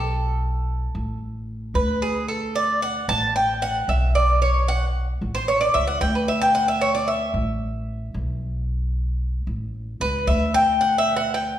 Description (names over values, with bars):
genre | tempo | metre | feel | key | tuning
latin, Cuban son and guajira | 113 BPM | 4/4 | straight | unclear | A4 = 440 Hz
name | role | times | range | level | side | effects
Cuban tres | arpeggios | 0.0-11.6 s | G#4 to A5 | -21 LUFS | equal | none
upright bass | bass | 0.0-11.5 s | A1 to D2 | -24 LUFS | equal | none
room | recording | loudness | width
wet recital hall reverb, RT60 1.3 s | recorded in a church or concert hall | -20 LUFS | side -11 dB against mid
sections
0.0-11.6 A section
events
Cuban tres solo 0.0-11.6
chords
0.0 Asus2; 1.2 D5; 3.4 A69; 5.5 A; 6.5 Dsus2; 7.6 Asus2; 9.7 A; 10.8 D5